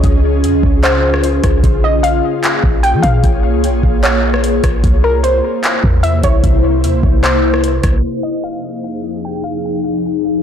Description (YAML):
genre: hip hop, atmospheric cloud-rap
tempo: 150 BPM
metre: 4/4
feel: half-time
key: F minor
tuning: A4 = 440 Hz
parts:
  - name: warbly dusty pluck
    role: melody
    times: 0.0-9.6 s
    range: Bb4 to G5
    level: -19 LUFS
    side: left 1 dB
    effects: chorus, ping-pong delay
  - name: ethereal airy pad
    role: sustained chords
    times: 0.0-10.4 s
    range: F2 to Db5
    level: -17 LUFS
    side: left 2 dB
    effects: ensemble chorus, built-in reverb, sidechain pumping
  - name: clean 808-style bass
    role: bass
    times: 0.0-8.0 s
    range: Bb1 to F3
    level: -15 LUFS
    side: equal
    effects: none
  - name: booming analog drum machine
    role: drums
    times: 0.0-8.0 s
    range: handclaps, hi-hat, kick drum, rim click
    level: -15 LUFS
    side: equal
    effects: none
room: digital ambience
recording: blown-out, overdriven recording, overdrive, low-pass filter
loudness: -11 LUFS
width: side -8 dB against mid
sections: 0.0-8.0 A section; 8.0-10.4 B section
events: filter sweep 8.0-10.4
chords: 0.0 Dbmaj7; 1.6 Bbm7; 4.8 C7; 8.0 Fm7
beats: | 0.04 0.44 0.84 1.24 | 1.64 2.04 2.44 2.84 | 3.24 3.64 4.04 4.44 | 4.84 5.24 5.64 6.04 | 6.44 6.84 7.24 7.64 | 8.04 8.44 8.84 9.24 | 9.64 10.04